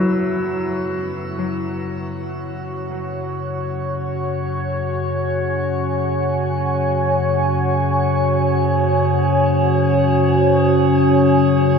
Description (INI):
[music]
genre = dark ambient drone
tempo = free time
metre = none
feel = none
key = unclear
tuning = A4 = 441 Hz
[part]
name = deep dark ambient pad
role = sustained chords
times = 0.0-11.8 s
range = E4 to G#5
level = -20 LUFS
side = right 1 dB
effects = chorus, built-in reverb, shimmer reverb
[part]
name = clear grand piano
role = arpeggios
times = 0.0-11.8 s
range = E2 to F#3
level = -24 LUFS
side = left 1 dB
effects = ping-pong delay, shimmer reverb
[part]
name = deep rumbling drone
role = drone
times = 0.1-11.8 s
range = F#2 to C#3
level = -21 LUFS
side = left 1 dB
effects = built-in reverb
[part]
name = metallic inharmonic drone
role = texture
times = 8.3-11.8 s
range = C#4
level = -20 LUFS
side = left 2 dB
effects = chorus, built-in reverb, shimmer reverb
[sound]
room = wet huge ambient reverb, RT60 7.8 s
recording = none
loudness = -16 LUFS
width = side -5 dB against mid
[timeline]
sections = 0.0-11.8 A section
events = fade-in on synth drone 0.0-11.8; fade-in on ambient pad 0.0-11.8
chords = 0.0 F#5